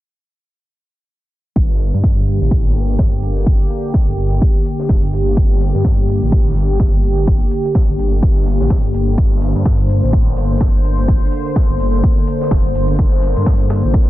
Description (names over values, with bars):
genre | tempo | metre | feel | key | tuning
bass house | 126 BPM | 4/4 | swing 59% on 16ths | G minor | A4 = 440 Hz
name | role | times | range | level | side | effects
sweeping resonant pad | sustained chords | 1.6-14.1 s | D3 to C5 | -20 LUFS | equal | chorus, sidechain pumping
phased detuned saw bass | bass | 1.6-14.1 s | F1 to G2 | -17 LUFS | equal | phaser, overdrive, sidechain pumping
breakbeat sampler-style drum kit | drums | 1.6-14.1 s | hi-hat, snare drum | -35 LUFS | equal | high-pass filter on hats, high-pass filter on snare
electronic kick drum | drums | 1.6-14.1 s | none | -15 LUFS | equal | overdrive
electronic hi-hat | drums | 1.8-13.8 s | none | -60 LUFS | equal | none
room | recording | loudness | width
digital ambience | dense, heavily limited modern master, low-pass filter | -12 LUFS | side -15 dB against mid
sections
1.6-14.1 A section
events
filter sweep 1.6-14.1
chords
1.6 Gm